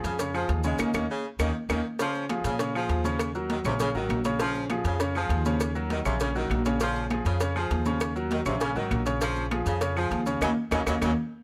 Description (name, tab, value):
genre	latin, salsa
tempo	200 BPM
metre	4/4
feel	straight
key	Bb minor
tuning	A4 = 444 Hz
part	clear saxophone section	second line	0.0-11.1 s	C3 to Ab3	-35 LUFS	equal	none
part	clear concert grand piano	accompaniment	0.0-11.1 s	Db3 to Db5	-32 LUFS	equal	none
part	upright bass	bass	0.0-11.1 s	Ab1 to Bb2	-32 LUFS	equal	none
part	cowbell	percussion	0.0-11.1 s	none	-37 LUFS	equal	none
part	maracas	percussion	0.0-11.1 s	none	-46 LUFS	equal	none
part	congas	percussion	0.2-11.1 s	none	-36 LUFS	equal	none
part	claves	percussion	0.3-11.1 s	none	-38 LUFS	equal	none
room	light reverb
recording	close, detailed microphones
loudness	-27 LUFS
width	mono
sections	0.0-2.0 A section; 2.0-11.4 A section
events	band accent 0.8-2.0, 10.4-11.4; drum fill 10.9-11.4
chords	0.0 Bbm7 (rootless); 0.8 Eb5; 2.0 Bbm7; 3.2 Ebm7; 4.4 Bbm7; 5.6 Ebm7; 6.8 Bbm7; 8.0 Ebm7; 9.2 Bbm7; 10.4 Ebm7